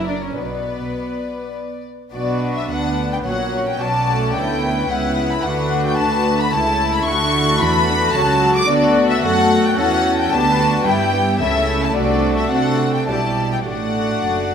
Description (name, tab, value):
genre	quick classical-period movement for string orchestra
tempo	100-113 BPM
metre	3/4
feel	rubato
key	B minor, D major from 8.7 s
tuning	A4 = 441 Hz
part	warm studio violin section	melody	0.0-14.5 s	A#4 to D6	-20 LUFS	left 3 dB	none
part	warm symphonic violin section	second line	0.0-14.5 s	D4 to D5	-24 LUFS	left 3 dB	none
part	rich symphonic viola section	accompaniment	0.0-14.5 s	F#3 to F#4	-22 LUFS	right 1 dB	none
part	dark symphonic double bass section	bass	0.0-14.5 s	F#1 to C3	-25 LUFS	right 4 dB	none
part	warm symphonic cello section	bass	0.0-14.5 s	D2 to C4	-25 LUFS	right 3 dB	none
room	wet scoring stage reverb, RT60 1.7 s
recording	none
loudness	-15 LUFS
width	side -7 dB against mid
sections	0.0-2.1 A section; 2.1-14.5 B section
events	none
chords	0.4 Bm; 3.2 F#/A#; 3.8 Bm; 5.4 D; 6.5 A/C#; 7.1 D; 10.3 Em7/D; 11.4 A/C#; 12.0 D7/C; 13.1 G/B; 13.7 D/A